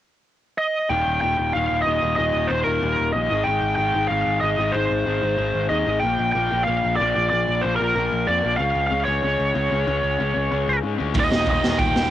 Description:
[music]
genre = punk rock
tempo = 187 BPM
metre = 4/4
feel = straight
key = Eb mixolydian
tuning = A4 = 441 Hz
[part]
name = biting lead guitar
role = melody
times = 0.6-12.1 s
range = Bb4 to G5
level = -21 LUFS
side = right 2 dB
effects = overdrive, cassette tape, tape echo
[part]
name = raw garage guitar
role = riff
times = 0.9-12.1 s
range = Eb2 to Db4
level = -25 LUFS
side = left 8 dB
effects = overdrive, cassette tape
[part]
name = modern bright picked electric bass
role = bass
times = 0.9-12.1 s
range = Eb1 to Ab2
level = -27 LUFS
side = right 1 dB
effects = none
[part]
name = distorted electric guitar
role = riff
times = 11.1-12.1 s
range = Eb2 to Eb3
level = -28 LUFS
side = right 10 dB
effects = overdrive, cassette tape
[part]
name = raw garage drum kit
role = drums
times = 11.1-12.0 s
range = hi-hat, kick drum, snare drum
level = -21 LUFS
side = right 1 dB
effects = cassette tape
[sound]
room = little or no reverb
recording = home recording on cassette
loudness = -19 LUFS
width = side -12 dB against mid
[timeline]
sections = 0.9-12.1 A section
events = none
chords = 0.0 N.C.; 0.9 Eb; 3.3 Ab; 6.0 Bb; 8.6 Db5; 11.2 Eb

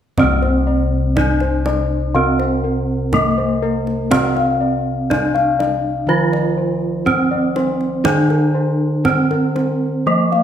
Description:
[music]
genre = Javanese gamelan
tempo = 61 BPM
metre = 4/4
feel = straight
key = unclear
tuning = A4 = 440 Hz
[part]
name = gamelan-type bronze metallophone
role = melody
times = 0.2-10.4 s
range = Bb3-40c to F4-20c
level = -19 LUFS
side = right 1 dB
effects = none
[part]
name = gamelan-type bronze metallophone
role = accompaniment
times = 0.2-10.4 s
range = C3 to Bb3-40c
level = -21 LUFS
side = right 2 dB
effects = none
[part]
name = gamelan-type bossed gongs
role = arpeggios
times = 0.2-10.4 s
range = Bb4-40c to F5-20c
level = -22 LUFS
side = left 4 dB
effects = none
[part]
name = gamelan-type bossed gongs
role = bass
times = 0.2-10.4 s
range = C2 to D4+40c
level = -22 LUFS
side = left 1 dB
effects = none
[part]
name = kendang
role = percussion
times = 0.2-10.4 s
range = none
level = -25 LUFS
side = right 3 dB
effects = none
[sound]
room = moderate recital hall reverb, RT60 1.4 s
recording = none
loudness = -15 LUFS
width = side -9 dB against mid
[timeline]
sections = 0.2-10.4 A section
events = none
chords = none

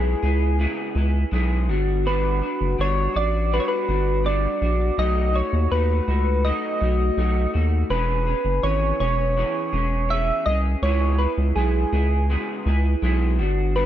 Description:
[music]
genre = indie pop, bedroom pop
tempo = 82 BPM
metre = 4/4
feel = straight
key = unclear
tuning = A4 = 440 Hz
[part]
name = soft electric-piano-like synth keys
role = melody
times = 0.0-13.9 s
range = G#4 to E5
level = -25 LUFS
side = right 1 dB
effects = analog chorus, tape echo
[part]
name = electric guitar through a small old amp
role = accompaniment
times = 0.0-13.9 s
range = B2 to G#4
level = -27 LUFS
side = left 1 dB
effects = analog chorus, vibrato effect
[part]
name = round analog bass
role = bass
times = 0.0-13.9 s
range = E1 to D#2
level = -21 LUFS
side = equal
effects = none
[sound]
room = digital ambience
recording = dark, warm production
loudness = -19 LUFS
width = side -11 dB against mid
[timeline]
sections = 0.0-13.9 A section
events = none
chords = 0.0 C#m7; 1.7 Gmaj7; 5.0 B7; 7.9 E6; 10.8 C#m7

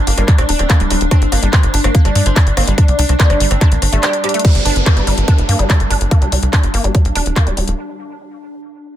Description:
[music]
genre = psychedelic trance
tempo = 144 BPM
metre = 4/4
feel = straight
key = G minor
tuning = A4 = 440 Hz
[part]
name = oud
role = melody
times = 0.0-4.4 s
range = G3 to D4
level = -23 LUFS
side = equal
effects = phaser, sidechain pumping, dub echo
[part]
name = swarming drone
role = sustained chords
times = 0.0-7.8 s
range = D4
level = -24 LUFS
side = left 1 dB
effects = built-in reverb, sidechain pumping
[part]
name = tight sequencer bass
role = bass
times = 0.0-7.7 s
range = D1 to G2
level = -15 LUFS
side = equal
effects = none
[part]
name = woody wave-folded pluck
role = riff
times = 0.1-7.6 s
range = G3 to G4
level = -22 LUFS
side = right 1 dB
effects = chorus, auto-pan, sidechain pumping, dub echo
[part]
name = drum and bass drum kit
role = drums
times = 0.1-7.8 s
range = crash cymbal, handclaps, hi-hat, rim click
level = -20 LUFS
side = left 1 dB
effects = none
[part]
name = electronic kick drum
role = drums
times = 0.3-7.4 s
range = none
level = -11 LUFS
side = equal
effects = none
[part]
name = downlifter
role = sound effects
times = 4.4-7.8 s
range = none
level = -25 LUFS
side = equal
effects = none
[sound]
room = digital ambience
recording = dense, heavily limited modern master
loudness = -11 LUFS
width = side -12 dB against mid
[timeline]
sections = 0.0-4.4 A section; 4.4-7.8 B section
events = drop 0.0-4.4; break 4.0-4.4; drum fill 4.2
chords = 0.0 G5

